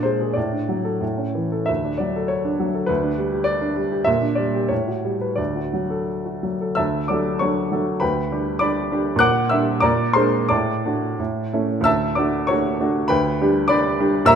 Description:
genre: classical, romantic character piece for solo piano.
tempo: 84-104 BPM.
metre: 2/4.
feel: rubato.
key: D major.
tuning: A4 = 441 Hz.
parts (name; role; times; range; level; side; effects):
clear baby grand piano; solo; 0.0-14.4 s; D2 to F#6; -18 LUFS; equal; none.
room: moderate scoring stage reverb, RT60 1.8 s.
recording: none.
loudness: -19 LUFS.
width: side -8 dB against mid.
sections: 0.0-6.8 A section; 6.8-14.4 A section.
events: none.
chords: 0.4 D/A; 1.0 A; 1.7 D; 2.9 G/D; 4.1 Gm/Bb; 4.7 A13; 5.4 D; 8.0 G/D; 9.2 Gm/Bb; 9.8 Bb7; 10.5 D/A; 11.2 A; 11.9 D; 13.1 G/D.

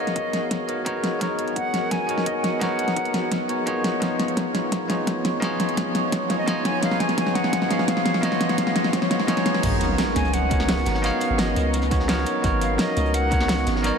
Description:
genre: liquid drum and bass.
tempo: 171 BPM.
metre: 4/4.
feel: straight.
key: G# dorian.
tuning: A4 = 440 Hz.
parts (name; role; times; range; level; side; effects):
silver concert flute; melody; 0.0-3.5, 6.3-14.0 s; C#5 to G#5; -29 LUFS; left 1 dB; ping-pong delay.
bell-like tine electric piano; accompaniment; 0.0-14.0 s; E#3 to C#5; -26 LUFS; right 1 dB; tape echo.
warm analog pad; sustained chords; 0.0-14.0 s; E#3 to D#5; -30 LUFS; left 1 dB; chorus, sidechain pumping.
pop drum kit; drums; 0.1-13.9 s; crash cymbal, hi-hat, snare drum; -25 LUFS; equal; overdrive.
electronic kick drum; drums; 0.2-13.4 s; none; -29 LUFS; equal; none.
long sustained 808-style bass; bass; 9.6-13.9 s; G#1 to C#2; -25 LUFS; right 1 dB; none.
crunchy breakbeat drum kit; drums; 9.6-13.9 s; hi-hat, snare drum; -34 LUFS; right 1 dB; high-pass filter on hats, high-pass filter on snare, high-pass filter on room.
sub drop; sound effects; 9.6-11.0 s; none; -33 LUFS; right 1 dB; none.
room: wet huge ambient reverb, RT60 9.0 s.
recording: dreamy mix soaked in reverb.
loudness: -20 LUFS.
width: side -6 dB against mid.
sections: 0.0-9.6 A section; 9.6-14.0 B section.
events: build-up 0.0-9.6; drum fill 0.0-9.6; drop 9.6-14.0; impact 9.6-11.0.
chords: 0.0 G#m11; 3.8 C#9; 9.6 G#m11.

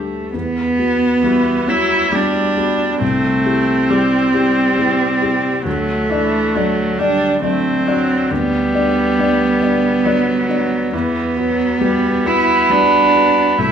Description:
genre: neoclassical piano and strings.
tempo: 68 BPM.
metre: 3/4.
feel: rubato.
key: E minor.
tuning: A4 = 440 Hz.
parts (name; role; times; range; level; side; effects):
warm cello; second line; 0.0-13.7 s; A3 to E4; -16 LUFS; right 2 dB; none.
felt-muted upright piano; accompaniment; 0.0-13.7 s; C2 to D5; -20 LUFS; left 5 dB; none.
rich viola; accompaniment; 1.2-13.7 s; E3 to B3; -19 LUFS; right 1 dB; none.
room: moderate recital hall reverb, RT60 1.6 s.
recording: minimal, uncompressed stereo recording.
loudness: -13 LUFS.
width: side -8 dB against mid.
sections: 0.3-13.7 A section.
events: none.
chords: 0.3 Emadd9; 3.0 C; 5.7 D; 8.3 G/D; 10.9 Emadd9.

